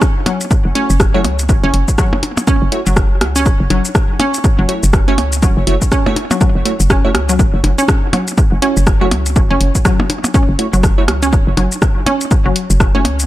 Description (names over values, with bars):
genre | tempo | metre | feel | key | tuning
minimal techno | 122 BPM | 4/4 | swing 59% on 16ths | F# minor | A4 = 440 Hz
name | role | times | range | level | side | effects
electronic kick drum | drums | 0.0-12.9 s | none | -13 LUFS | equal | none
punchy analog drum machine | drums | 0.0-13.3 s | hi-hat, rim click, shaker | -21 LUFS | left 1 dB | dub echo
electronic percussion blips and rim click | percussion | 0.0-13.2 s | none | -21 LUFS | equal | analog delay
resonant blip pluck | riff | 0.3-13.0 s | F#3 to C#4 | -18 LUFS | equal | chorus, sidechain pumping, dub echo
hollow knocking FM bass | bass | 0.7-13.3 s | F#1 to C#2 | -16 LUFS | equal | tube saturation, sidechain pumping
wavetable chord stab | stabs | 0.8-13.0 s | A3 to C#5 | -23 LUFS | right 2 dB | dub echo
room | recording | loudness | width
digital ambience | echo-heavy mix | -11 LUFS | side -15 dB against mid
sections
0.0-13.3 A section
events
none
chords
0.0 F#5